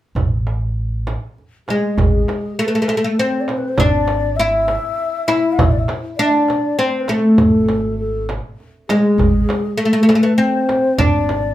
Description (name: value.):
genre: Persian modal ensemble.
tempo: 100 BPM.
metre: 3/4.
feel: straight.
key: A avaz esfahan.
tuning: A4 = 440 Hz.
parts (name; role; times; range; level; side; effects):
upright bass; bass; 0.1-11.5 s; G#1 to A1; -21 LUFS; right 1 dB; none.
frame drum; percussion; 0.2-11.4 s; none; -23 LUFS; right 2 dB; none.
tombak; percussion; 0.2-11.4 s; none; -22 LUFS; right 3 dB; none.
oud; melody; 1.7-11.5 s; G#3 to E4; -16 LUFS; equal; plate reverb.
breathy low ney; second line; 1.7-11.5 s; G#4 to F5+45c; -22 LUFS; left 3 dB; none.
room: wet small room reverb, RT60 0.5 s.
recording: heard from further back in the room.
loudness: -14 LUFS.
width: side -13 dB against mid.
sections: 0.2-2.0 A section; 2.0-11.5 B section.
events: none.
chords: none.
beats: | 0.16 0.77 1.37 | 1.97 2.58 3.18 | 3.78 4.38 4.98 | 5.58 6.18 6.79 | 7.39 7.99 8.59 | 9.19 9.79 10.39 | 10.99.